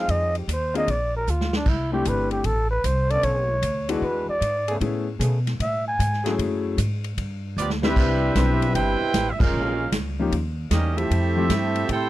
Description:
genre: jazz, big band swing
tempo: 152 BPM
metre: 4/4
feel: swing 67% on 8ths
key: C major from 8.0 s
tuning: A4 = 440 Hz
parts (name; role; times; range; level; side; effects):
- trumpet with bucket mute; melody; 0.0-6.4 s; D4 to G#5; -25 LUFS; equal; none
- warm trombone section; sustained chords; 0.0-0.5, 3.1-11.5 s; C#3 to B4; -31 LUFS; left 1 dB; none
- upright bass; bass; 0.1-12.1 s; E1 to B2; -25 LUFS; equal; none
- swinging big-band drum kit; drums; 0.1-12.0 s; crash cymbal, hi-hat, kick drum, ride cymbal, snare drum; -28 LUFS; equal; none
- clear concert grand piano; accompaniment; 0.7-11.5 s; F3 to B4; -26 LUFS; left 4 dB; none
- clear trumpet section; melody; 7.6-12.1 s; B3 to G5; -26 LUFS; right 3 dB; none
- warm trombone section; second line; 7.6-12.1 s; B2 to G4; -28 LUFS; right 3 dB; none
room: little or no reverb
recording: dry, close 1970s-style studio recording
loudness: -21 LUFS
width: side -15 dB against mid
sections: 0.0-8.0 A section; 8.0-12.1 B section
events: muted trumpet solo 0.0-8.0; drum fill 1.3-1.7, 7.6-8.0; band accent 9.3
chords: 0.1 Fm7; 0.9 A#; 1.7 C6; 3.2 Bm9; 4.0 E9; 4.8 Amaj9; 6.4 F#m9; 7.2 G7; 8.0 Cmaj7; 9.5 Bbm7; 10.3 Eb9; 11.1 Fmaj9

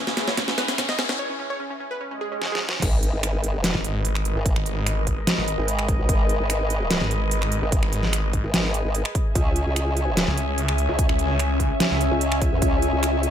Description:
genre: heavy wobble dubstep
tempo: 147 BPM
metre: 4/4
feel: half-time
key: G# minor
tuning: A4 = 440 Hz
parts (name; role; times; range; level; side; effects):
- wide unison pluck; melody; 0.0-2.8 s; C#4 to D#5; -30 LUFS; right 1 dB; ping-pong delay
- warm studio string section; sustained chords; 0.0-13.3 s; C#2 to G#5; -30 LUFS; left 1 dB; sidechain pumping, low-pass filter
- riser, swell and sub drop; sound effects; 0.0-4.5 s; none; -30 LUFS; right 1 dB; none
- deep dark ambient pad; texture; 0.0-13.3 s; C#4 to G#5; -32 LUFS; left 1 dB; chorus, built-in reverb, sidechain pumping
- dubstep drum kit; drums; 0.1-13.3 s; crash cymbal, finger snaps, hi-hat, snare drum; -25 LUFS; right 1 dB; none
- electronic kick drum; drums; 0.4-12.7 s; none; -23 LUFS; equal; none
- formant-sweep wobble bass; bass; 2.8-13.3 s; G#1 to E2; -24 LUFS; equal; chorus, overdrive
- snarling distorted saw bass; bass; 3.7-12.1 s; G#1 to C#2; -24 LUFS; equal; distortion, overdrive
room: digital ambience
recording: high-pass filter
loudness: -20 LUFS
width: side -9 dB against mid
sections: 0.0-2.8 A section; 2.8-13.3 B section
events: build-up 0.0-2.8; drum fill 0.0-1.2, 2.4-2.8; riser 0.0-1.2; filter sweep on string section 0.0-2.8; break 1.2-2.8; swell 2.1-2.8; drop 2.8-13.3; impact 2.8-4.5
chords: 0.0 C#m; 2.8 G#madd9; 9.4 C#m

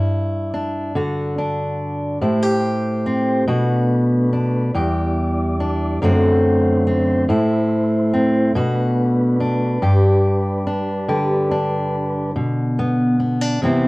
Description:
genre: acoustic folk duo or small band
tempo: 47 BPM (dotted quarters)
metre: 6/8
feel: straight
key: unclear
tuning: A4 = 438 Hz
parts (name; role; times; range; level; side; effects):
- fingerpicked steel-string acoustic guitar; accompaniment; 0.0-13.9 s; E2 to G4; -17 LUFS; equal; none
- mellow tonewheel organ; sustained chords; 2.2-12.3 s; F#3 to D5; -23 LUFS; right 1 dB; slow rotary speaker
room: moderate studio reverb, RT60 0.6 s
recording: worn, warbling old tape, cassette tape, warbly pitch drift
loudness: -16 LUFS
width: side -22 dB against mid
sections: 0.0-12.4 A section; 12.4-13.9 B section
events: none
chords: 0.0 G5; 2.2 Am7; 3.5 Bm7; 4.8 Em7; 6.0 D7/F#; 7.3 Am; 8.6 Bm7; 9.8 G; 12.4 Bm

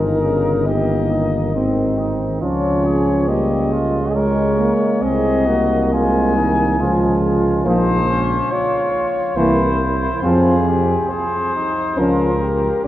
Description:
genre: classical, brass quintet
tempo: 69 BPM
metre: 3/4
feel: rubato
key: Ab major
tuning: A4 = 444 Hz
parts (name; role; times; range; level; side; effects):
- dark cornet; melody; 0.0-12.9 s; Ab4 to Ab5; -21 LUFS; left 3 dB; none
- dark trumpet; second line; 0.0-12.9 s; C4 to Bb4; -25 LUFS; right 3 dB; none
- clear euphonium; accompaniment; 0.0-12.3 s; Db3 to Ab3; -22 LUFS; right 1 dB; none
- mellow French horn; accompaniment; 0.0-12.9 s; Ab3 to Eb4; -22 LUFS; left 1 dB; none
- warm bass trombone; bass; 0.0-12.9 s; G1 to F2; -21 LUFS; right 1 dB; none
room: wet cathedral reverb, RT60 4.6 s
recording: worn, warbling old tape, cassette tape, warbly pitch drift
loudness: -15 LUFS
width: side -14 dB against mid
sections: 0.0-12.9 A section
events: none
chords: 0.0 Eb7/G; 1.6 Ab; 2.4 Db; 5.0 Ab/C; 6.8 Db; 7.7 Bbm; 9.4 C7; 10.2 Fm; 12.0 Bbm/Db

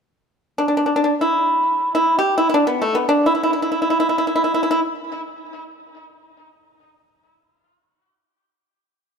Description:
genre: chinese traditional, Chinese solo plucked strings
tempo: free time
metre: none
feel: none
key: E yu mode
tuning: A4 = 440 Hz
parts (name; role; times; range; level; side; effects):
- pipa; solo; 0.6-4.8 s; A3 to G4; -17 LUFS; equal; tape echo
room: moderate concert hall reverb, RT60 2.4 s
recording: none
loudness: -16 LUFS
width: side -6 dB against mid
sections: 0.0-8.4 A section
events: none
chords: none

